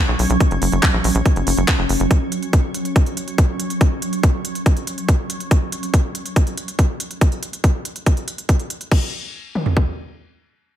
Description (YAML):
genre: psychedelic trance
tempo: 141 BPM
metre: 4/4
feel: straight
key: unclear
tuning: A4 = 435 Hz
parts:
  - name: swarming drone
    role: sustained chords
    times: 0.1-5.6 s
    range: F#3 to C#4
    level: -24 LUFS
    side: right 1 dB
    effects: built-in reverb, sidechain pumping
  - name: tight sequencer bass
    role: bass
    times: 0.1-2.1 s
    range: F#1 to B1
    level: -19 LUFS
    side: equal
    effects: none
  - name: garage drum kit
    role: drums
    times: 0.2-9.0 s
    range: crash cymbal, handclaps, hi-hat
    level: -26 LUFS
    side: equal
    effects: none
  - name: garage drum kit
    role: drums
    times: 0.4-9.9 s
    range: kick drum, toms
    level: -16 LUFS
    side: equal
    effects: none
room: little or no reverb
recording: none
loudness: -16 LUFS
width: side -11 dB against mid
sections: 0.0-8.9 A section; 8.9-10.8 B section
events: none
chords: 0.0 F#5; 8.9 N.C.